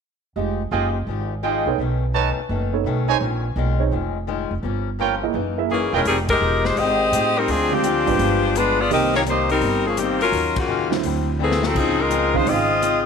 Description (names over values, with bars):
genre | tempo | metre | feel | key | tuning
jazz, big band swing | 168 BPM | 4/4 | swing 66% on 8ths | F minor | A4 = 440 Hz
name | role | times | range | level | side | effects
dark baby grand piano | accompaniment | 0.4-12.8 s | Db3 to Fb5 | -25 LUFS | right 14 dB | none
picked swing-style acoustic guitar | accompaniment | 0.4-13.1 s | Gb2 to Ab4 | -28 LUFS | left 12 dB | none
upright bass | bass | 0.4-13.1 s | Fb1 to A2 | -25 LUFS | right 1 dB | none
clear trumpet section | stabs | 0.7-6.0 s | D#4 to A5 | -24 LUFS | right 12 dB | none
edgy saxophone section | melody | 5.7-13.1 s | Db3 to Eb5 | -18 LUFS | left 2 dB | none
swinging big-band drum kit | drums | 6.1-12.9 s | crash cymbal, hi-hat, kick drum, ride cymbal, snare drum | -30 LUFS | left 4 dB | none
room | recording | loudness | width
light reverb, small room ambience | 1960s-style stereo with parts hard left and right | -18 LUFS | side -6 dB against mid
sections
0.4-6.1 A section; 6.1-13.1 B section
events
band accent 6.2, 10.5; drum fill 11.4-11.8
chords
0.4 Fm9; 1.8 B9; 3.2 Bbm11; 4.6 Gm7b5; 5.3 Gb13; 6.1 Fm9; 7.5 Dm7b5; 8.2 G7b9; 8.9 Cm7; 10.3 Ebm9; 11.0 D9; 11.8 Dbmaj9